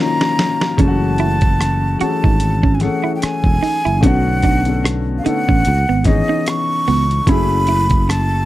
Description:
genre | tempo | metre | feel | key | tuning
R&B, neo-soul | 74 BPM | 4/4 | swing 56% on 16ths | unclear | A4 = 442 Hz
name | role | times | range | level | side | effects
breathy jazz flute | melody | 0.0-8.5 s | Eb5 to Db6 | -20 LUFS | right 1 dB | slapback echo
warm upright piano | accompaniment | 0.0-8.5 s | D3 to A4 | -20 LUFS | left 5 dB | none
chorused pulse-width pad | sustained chords | 0.0-0.8 s | none | barely audible | none | none
dusty soul sampler-style drum kit | drums | 0.2-8.3 s | hi-hat, kick drum, rim click, snare drum | -17 LUFS | equal | none
clean electric guitar | second line | 0.8-8.1 s | Cb4 to Gb4 | -20 LUFS | right 7 dB | none
sustaining fretless electric bass | bass | 0.8-8.4 s | Fb1 to Db2 | -17 LUFS | equal | none
room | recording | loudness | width
little or no reverb | dry, close 1970s-style studio recording | -13 LUFS | side -15 dB against mid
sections
0.8-8.5 A section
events
drum fill 0.0-0.8; band accent 0.0-0.8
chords
0.0 Ebm9; 0.8 Gbm9; 4.0 Bm9; 5.7 Dbm9; 7.3 Gbm9

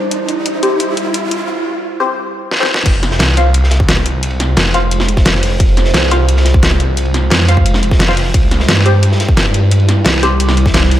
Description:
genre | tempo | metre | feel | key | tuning
dark technical drum and bass | 175 BPM | 4/4 | straight | F harmonic minor | A4 = 440 Hz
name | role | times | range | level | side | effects
deep dark ambient pad | sustained chords | 0.0-11.0 s | G3 to C5 | -21 LUFS | right 2 dB | chorus, built-in reverb, sidechain pumping
filtered dub chord stab | stabs | 0.0-11.0 s | C4 to F5 | -20 LUFS | left 2 dB | phaser, lush chorus, tape echo
riser | sound effects | 0.0-1.5 s | none | -20 LUFS | right 2 dB | none
dubstep drum kit | drums | 0.1-11.0 s | crash cymbal, hi-hat, snare drum | -15 LUFS | equal | none
phased detuned saw bass | bass | 2.9-11.0 s | F1 to G2 | -13 LUFS | equal | phaser, tube saturation, sidechain pumping
crunchy breakbeat drum kit | drums | 2.9-11.0 s | hi-hat, ride cymbal, snare drum | -23 LUFS | equal | high-pass filter on cymbals, high-pass filter on hats, high-pass filter on snare, high-pass filter on room
electronic kick drum | drums | 2.9-10.7 s | none | -13 LUFS | equal | none
room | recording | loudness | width
light reverb | high-pass filter | -10 LUFS | side -12 dB against mid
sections
0.0-2.9 A section; 2.9-11.0 B section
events
build-up 0.0-2.9; riser 0.0-1.5; filter sweep on synth stab 0.0-2.9; filter sweep 0.0-2.9; drum fill 2.5-2.9; drop 2.9-11.0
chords
0.0 C; 2.9 Fm; 8.3 C

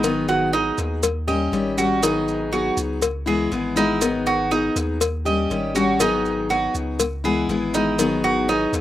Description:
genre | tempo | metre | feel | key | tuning
latin, Cuban son and guajira | 121 BPM | 4/4 | straight | G# minor | A4 = 444 Hz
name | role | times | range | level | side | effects
picked steel-string acoustic guitar | accompaniment | 0.0-8.8 s | D#3 to G#4 | -22 LUFS | left 4 dB | none
Cuban tres | arpeggios | 0.0-8.7 s | D#4 to D#5 | -23 LUFS | right 4 dB | slapback echo
punchy sub bass | bass | 0.0-8.8 s | G#1 to D#2 | -29 LUFS | equal | none
cowbell | percussion | 0.0-8.8 s | none | -27 LUFS | left 6 dB | slapback echo
maracas | percussion | 0.0-8.8 s | none | -29 LUFS | right 4 dB | none
room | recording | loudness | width
little or no reverb | recorded outdoors, with no room sound | -19 LUFS | side -13 dB against mid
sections
0.0-8.8 A section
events
none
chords
0.0 G#m7; 1.0 D#7; 2.0 G#m7; 3.0 C#m7; 4.0 G#m7; 5.0 D#7; 6.0 G#m7; 7.0 C#m7; 8.0 G#m7

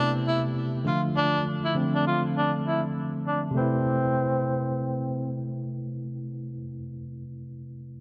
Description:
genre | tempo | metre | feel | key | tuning
afrobeats | 100 BPM | 4/4 | swing 58% on 16ths | A minor | A4 = 439 Hz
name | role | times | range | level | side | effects
breathy tenor saxophone | melody | 0.0-5.3 s | C4 to F4 | -30 LUFS | equal | digital delay
barky tine electric piano | accompaniment | 0.0-8.0 s | C3 to B4 | -30 LUFS | equal | none
room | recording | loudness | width
moderate lush hall reverb, RT60 2.7 s | dark, warm production, low-pass filter | -27 LUFS | mono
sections
0.0-3.6 A section; 3.6-6.0 B section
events
filter sweep 0.0-3.6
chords
0.0 Amadd9; 0.9 Dm; 3.6 Amadd9

